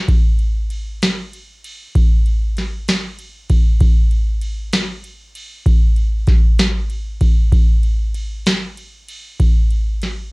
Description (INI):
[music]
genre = pop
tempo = 64 BPM (dotted quarters)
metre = 6/8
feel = straight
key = none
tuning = none
[part]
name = booming analog drum machine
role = drums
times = 0.1-10.2 s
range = kick drum, ride cymbal, snare drum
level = -14 LUFS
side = equal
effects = cassette tape
[sound]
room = light reverb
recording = home recording on cassette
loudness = -14 LUFS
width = side -28 dB against mid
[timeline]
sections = 0.0-10.3 A section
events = none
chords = none